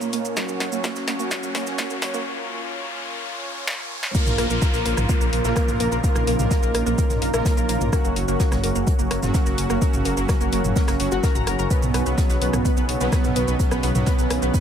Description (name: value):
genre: melodic techno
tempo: 127 BPM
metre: 4/4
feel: straight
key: Bb phrygian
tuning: A4 = 440 Hz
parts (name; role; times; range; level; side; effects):
- warm analog pad; sustained chords; 0.0-14.6 s; Db3 to Db5; -32 LUFS; equal; chorus, sidechain pumping
- analog pluck; arpeggios; 0.0-14.6 s; Bb3 to Bb6; -27 LUFS; right 1 dB; chorus, sidechain pumping, ping-pong delay
- analog synth brass; stabs; 0.0-14.6 s; B2 to Bb4; -27 LUFS; right 3 dB; chorus, sidechain pumping, ping-pong delay
- analog drone; drone; 0.0-14.6 s; Bb2 to Db4; -34 LUFS; left 2 dB; chorus, sidechain pumping
- deep house drum kit; drums; 0.0-14.6 s; crash cymbal, hi-hat, rim click, shaker, snare drum, toms; -28 LUFS; equal; overdrive, high-pass filter on snare, sidechain pumping on perc, high-pass filter on perc, sidechain pumping on toms, high-pass filter on toms, sidechain pumping on hats, high-pass filter on hats, sidechain pumping on cymbals, high-pass filter on cymbals, high-pass filter on room
- riser and downlifter; sound effects; 0.0-7.9 s; none; -32 LUFS; left 2 dB; none
- vintage brush drum kit; drums; 0.1-14.6 s; hi-hat, snare drum; -39 LUFS; right 2 dB; none
- electronic kick drum; drums; 0.4-14.6 s; none; -21 LUFS; left 1 dB; overdrive, high-pass filter on kick, high-pass filter on room
- dark detuned saw bass; bass; 4.3-14.5 s; Gb1 to B1; -26 LUFS; left 1 dB; sidechain pumping
room: light reverb, digital ambience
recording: high-pass filter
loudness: -19 LUFS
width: side -8 dB against mid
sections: 0.0-4.1 A section; 4.1-14.6 B section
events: build-up 0.0-4.1; drum fill 0.0-2.3, 3.7-4.1; riser 0.0-4.1; filter sweep on synth pluck 0.0-4.1; filter sweep on analog polysynth 0.0-4.1; filter sweep 0.0-4.1; break 2.3-4.1; drop 4.1-14.6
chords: 0.4 Gb; 4.1 Bbm; 7.9 Gb; 11.7 B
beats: | 0.37 0.84 1.31 1.78 | 2.26 2.73 3.20 3.67 | 4.15 4.62 5.09 5.57 | 6.04 6.51 6.98 7.46 | 7.93 8.40 8.87 9.35 | 9.82 10.29 10.76 11.23 | 11.71 12.18 12.65 13.12 | 13.60 14.07 14.54